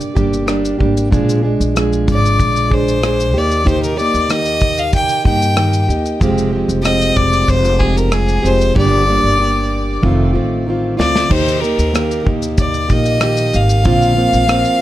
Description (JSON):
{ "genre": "acoustic pop", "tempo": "94 BPM", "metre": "4/4", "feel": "straight", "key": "unclear", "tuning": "A4 = 440 Hz", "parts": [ { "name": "fingerpicked plugged-in steel-string acoustic guitar", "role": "accompaniment", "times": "0.0-14.8 s", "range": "F2 to Ab4", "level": "-17 LUFS", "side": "right 1 dB", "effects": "none" }, { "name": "modern studio drum kit", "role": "drums", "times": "0.0-14.8 s", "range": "crash cymbal, kick drum, rim click, shaker, snare drum", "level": "-18 LUFS", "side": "equal", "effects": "none" }, { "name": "upright bass", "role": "bass", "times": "0.2-14.6 s", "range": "F1 to G2", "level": "-18 LUFS", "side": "equal", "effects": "none" }, { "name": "rich fiddle", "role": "melody", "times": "2.1-14.8 s", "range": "Ab4 to G5", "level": "-17 LUFS", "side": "left 2 dB", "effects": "plate reverb, ping-pong delay" } ], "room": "light reverb", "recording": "none", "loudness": "-12 LUFS", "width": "side -14 dB against mid", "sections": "0.0-11.3 A section; 11.3-14.8 B section", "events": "drum fill 8.8-11.3", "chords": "0.0 Gm; 1.1 Bb7; 3.3 Eb; 6.2 Fmadd9; 8.8 Gm; 10.0 F7; 11.3 Eb; 13.9 Bbadd9" }